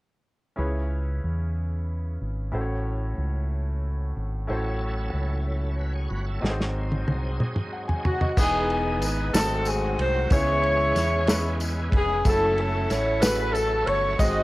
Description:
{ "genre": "slow gospel", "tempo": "62 BPM (dotted quarters)", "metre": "6/8", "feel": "straight", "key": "C# minor", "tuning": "A4 = 440 Hz", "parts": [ { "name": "bright baby grand piano", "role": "accompaniment", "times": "0.6-14.4 s", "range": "G#2 to G#5", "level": "-32 LUFS", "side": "equal", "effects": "cassette tape" }, { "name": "fingered electric bass", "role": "bass", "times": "0.6-14.4 s", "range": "E1 to E2", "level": "-27 LUFS", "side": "equal", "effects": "none" }, { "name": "bright tonewheel organ", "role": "sustained chords", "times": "4.5-14.4 s", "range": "E3 to E5", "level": "-35 LUFS", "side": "right 2 dB", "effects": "slow rotary speaker, chorus vibrato, cassette tape" }, { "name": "warm soul drum kit", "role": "drums", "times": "6.4-14.3 s", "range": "crash cymbal, kick drum, ride cymbal, snare drum, toms", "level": "-26 LUFS", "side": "equal", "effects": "none" }, { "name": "mellow saxophone section", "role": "melody", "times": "8.1-14.4 s", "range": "B3 to D#5", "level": "-24 LUFS", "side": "equal", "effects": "cassette tape" }, { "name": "tambourine", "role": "percussion", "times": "8.4-14.4 s", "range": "none", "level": "-36 LUFS", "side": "left 3 dB", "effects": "none" } ], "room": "light reverb, studio reverb", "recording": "home recording on cassette", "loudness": "-23 LUFS", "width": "side -19 dB against mid", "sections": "0.6-8.4 A section; 8.4-14.4 B section", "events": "drum fill 6.4-8.4", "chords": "0.6 C#m7; 2.5 A6; 4.5 F#m7/A; 6.4 G#7; 8.4 Emaj7; 9.3 G#7b9; 10.3 C#m7; 12.3 F#m7" }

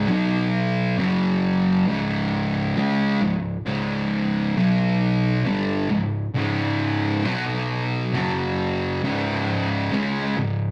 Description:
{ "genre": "metal", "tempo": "67 BPM", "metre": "4/4", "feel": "straight", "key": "unclear", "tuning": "A4 = 441 Hz", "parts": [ { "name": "fuzz guitar", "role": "solo", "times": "0.0-10.7 s", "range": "C#2 to C#4", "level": "-23 LUFS", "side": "equal", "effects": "distortion" } ], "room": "moderate stone room reverb, RT60 1.1 s", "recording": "rough rehearsal-room recording, warm saturation", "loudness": "-23 LUFS", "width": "mono", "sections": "0.0-10.7 A section", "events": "none", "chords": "0.1 B5; 1.0 F#5; 1.9 C#5; 4.6 B5; 5.5 C#5; 7.2 B5; 8.1 F#5; 9.0 C#5" }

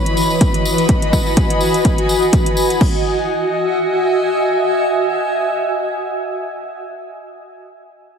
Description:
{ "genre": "piano house", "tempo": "125 BPM", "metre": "4/4", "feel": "swing 56% on 16ths", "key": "E major", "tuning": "A4 = 441 Hz", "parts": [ { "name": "rich chamber string section", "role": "sustained chords", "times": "0.0-2.8 s", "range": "B4 to B5", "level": "-21 LUFS", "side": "equal", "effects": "sidechain pumping" }, { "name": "granular cloud pad", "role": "texture", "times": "0.0-6.3 s", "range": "E3 to B5", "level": "-17 LUFS", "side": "equal", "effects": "built-in reverb, sidechain pumping" }, { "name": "house drum kit", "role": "drums", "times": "0.1-2.9 s", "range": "crash cymbal, hi-hat", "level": "-26 LUFS", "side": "equal", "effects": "overdrive" }, { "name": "tambourine", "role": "percussion", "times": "0.2-2.8 s", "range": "none", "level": "-26 LUFS", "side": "equal", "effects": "none" }, { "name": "electronic kick drum", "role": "drums", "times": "0.4-2.9 s", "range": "none", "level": "-16 LUFS", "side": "equal", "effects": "overdrive" } ], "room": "moderate lush hall reverb, RT60 1.6 s", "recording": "heavily compressed radio sound, multiband compression", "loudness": "-14 LUFS", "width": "side -6 dB against mid", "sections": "0.0-2.8 A section; 2.8-6.7 B section", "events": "none", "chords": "0.0 Emaj9" }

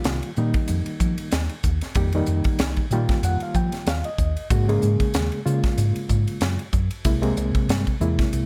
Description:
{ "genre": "electric jazz fusion", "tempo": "94 BPM", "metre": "4/4", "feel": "swing 56% on 16ths", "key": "F minor", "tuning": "A4 = 440 Hz", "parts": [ { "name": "overdriven reed electric piano", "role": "accompaniment", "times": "0.0-8.5 s", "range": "C3 to G5", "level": "-28 LUFS", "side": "equal", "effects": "fast tremolo" }, { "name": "crisp fusion drum kit", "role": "drums", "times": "0.0-8.5 s", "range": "hi-hat, kick drum, ride cymbal, snare drum", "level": "-27 LUFS", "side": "equal", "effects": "none" }, { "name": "hollow-body short-scale fingered electric bass", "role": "bass", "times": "0.1-8.5 s", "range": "C2 to F3", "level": "-26 LUFS", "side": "equal", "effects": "none" } ], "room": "little or no reverb", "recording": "none", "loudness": "-23 LUFS", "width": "mono", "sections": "0.0-8.5 A section", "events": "reed electric piano fill 2.6-4.5", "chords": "0.0 F9sus4; 4.5 Ab9sus4; 7.1 C7b13" }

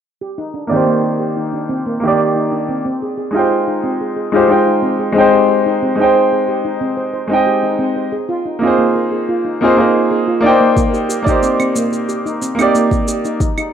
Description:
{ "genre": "sunset chillout", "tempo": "91 BPM", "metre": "4/4", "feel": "straight", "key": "C minor", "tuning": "A4 = 439 Hz", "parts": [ { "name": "steel pan", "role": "arpeggios", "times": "0.2-13.7 s", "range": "Bb3 to C5", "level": "-20 LUFS", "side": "right 1 dB", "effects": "low-pass filter, digital delay" }, { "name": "bright grand piano", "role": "accompaniment", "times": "0.7-13.4 s", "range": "Eb3 to G5", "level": "-14 LUFS", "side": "moving between left 4 dB and right 3 dB", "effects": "auto-pan, low-pass filter, digital delay" }, { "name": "electronic kick drum", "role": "drums", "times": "10.8-13.5 s", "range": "none", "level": "-18 LUFS", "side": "equal", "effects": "overdrive, small room ambience" }, { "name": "shaker and claves", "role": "drums", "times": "10.8-13.7 s", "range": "none", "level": "-25 LUFS", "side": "right 2 dB", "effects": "overdrive, small room ambience" } ], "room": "light reverb, small room reverb", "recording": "rough home demo mix", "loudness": "-13 LUFS", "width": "side -8 dB against mid", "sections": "0.2-13.7 A section", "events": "filter sweep on grand piano 0.2-13.7", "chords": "0.2 Cm9; 2.9 Fm9; 5.5 Abmaj7; 8.1 Bb9sus4; 10.8 Cm9" }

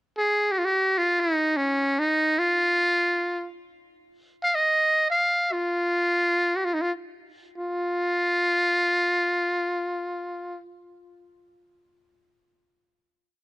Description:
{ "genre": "arabic", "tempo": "free time", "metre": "none", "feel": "none", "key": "F maqam bayati", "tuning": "A4 = 441 Hz", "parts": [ { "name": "trumpet with metal mute", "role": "solo", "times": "0.2-10.6 s", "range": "Db4 to F5", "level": "-22 LUFS", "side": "equal", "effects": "none" } ], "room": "small room ambience", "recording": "dry, close 1970s-style studio recording", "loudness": "-21 LUFS", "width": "side -18 dB against mid", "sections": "0.0-7.6 free-time section; 7.6-11.5 final note", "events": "none", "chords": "none" }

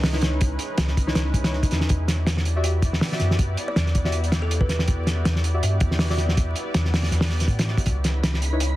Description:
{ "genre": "drum and bass, jungle", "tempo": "161 BPM", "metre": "4/4", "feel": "swing 55% on 16ths", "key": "unclear", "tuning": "A4 = 435 Hz", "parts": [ { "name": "lush unison pad", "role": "sustained chords", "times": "0.0-8.8 s", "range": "G#3 to D5", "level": "-32 LUFS", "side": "equal", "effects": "chorus, vintage 12-bit sampler grit" }, { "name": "soft dub sub bass", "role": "bass", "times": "0.0-8.8 s", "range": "B1 to A2", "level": "-23 LUFS", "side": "equal", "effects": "none" }, { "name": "cloth-damped thuddy drum kit", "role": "drums", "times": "0.0-8.7 s", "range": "hi-hat, kick drum, snare drum", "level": "-23 LUFS", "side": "equal", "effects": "none" }, { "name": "deep mellow chord stab", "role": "stabs", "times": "0.1-8.7 s", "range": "D#4 to E5", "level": "-31 LUFS", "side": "left 1 dB", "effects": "chorus, dub echo" }, { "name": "kalimba", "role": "melody", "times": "3.7-4.8 s", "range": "A4 to D5", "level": "-34 LUFS", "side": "equal", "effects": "vintage 12-bit sampler grit, dub echo" }, { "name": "wind-like tuned noise texture", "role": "texture", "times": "8.0-8.8 s", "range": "B5", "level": "-37 LUFS", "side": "right 4 dB", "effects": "built-in reverb" } ], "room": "light reverb", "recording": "dense, heavily limited modern master, vinyl crackle", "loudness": "-20 LUFS", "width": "side -16 dB against mid", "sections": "0.0-8.8 A section", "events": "none", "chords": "0.0 C#m9; 1.9 Em9; 7.9 C#m9" }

